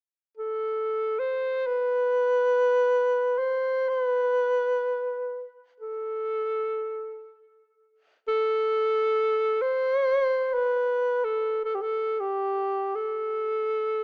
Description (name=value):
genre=caucasian folk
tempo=free time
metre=none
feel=none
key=A minor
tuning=A4 = 440 Hz
part: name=warm alto saxophone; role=melody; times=0.4-14.0 s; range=G4 to C5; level=-26 LUFS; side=equal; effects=none
room=light reverb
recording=rough home demo mix, small speaker sound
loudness=-26 LUFS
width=mono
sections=0.0-14.0 A section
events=none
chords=none